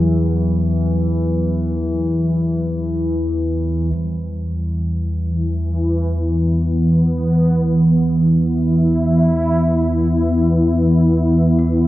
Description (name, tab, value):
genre	dark ambient drone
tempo	free time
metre	none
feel	none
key	E minor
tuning	A4 = 440 Hz
part	gamelan-type bronze metallophone	arpeggios	0.0-11.9 s	F#3 to B3	-31 LUFS	right 1 dB	none
part	analog drone	drone	0.0-11.9 s	E2 to E3	-18 LUFS	equal	chorus
part	sweeping resonant pad	sustained chords	4.0-11.9 s	E3 to E4	-16 LUFS	equal	chorus
room	wet cathedral reverb, RT60 6.1 s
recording	worn, warbling old tape, cassette tape, warbly pitch drift, nothing above 10.3 kHz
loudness	-15 LUFS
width	side -16 dB against mid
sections	0.0-3.9 A section; 3.9-11.9 B section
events	filter sweep on synth drone 3.9-11.9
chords	0.0 Esus2; 3.9 Em